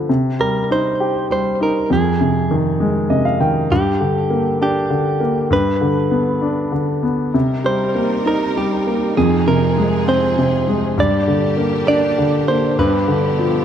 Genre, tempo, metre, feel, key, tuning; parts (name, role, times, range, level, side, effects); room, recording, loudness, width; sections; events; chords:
six-eight pop ballad; 66 BPM (dotted quarters); 6/8; straight; A4 = 440 Hz
clear grand piano; accompaniment; 0.0-13.6 s; F2 to G5; -16 LUFS; left 1 dB
direct-recorded clean electric guitar; melody; 0.4-13.6 s; G4 to D5; -20 LUFS; right 3 dB; ping-pong delay
clear studio string section; sustained chords; 7.3-13.6 s; Bb2 to Bb4; -24 LUFS; right 3 dB
light reverb, small room reverb; rough home demo mix; -15 LUFS; side -9 dB against mid
0.0-13.6 A section
grand piano fill 2.8-3.7
0.1 Cm; 1.9 Fm7; 3.7 Gm; 5.5 G; 7.3 Cm7; 9.2 Fm7; 11.0 Gm; 12.8 G7